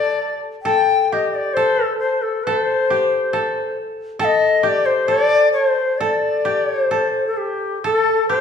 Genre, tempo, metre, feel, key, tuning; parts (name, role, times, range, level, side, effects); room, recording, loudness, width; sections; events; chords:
japanese traditional, Japanese chamber music; 66 BPM; 2/4; rubato; A4 = 440 Hz
bright reedy long shakuhachi; melody; 0.0-8.4 s; G4 to G5; -17 LUFS; left 4 dB
koto; second line; 0.0-8.4 s; G4 to A4; -21 LUFS; right 1 dB
wet recital hall reverb, RT60 1.5 s; recorded in a church or concert hall, studio ambience; -16 LUFS; side -7 dB against mid
0.0-7.8 A section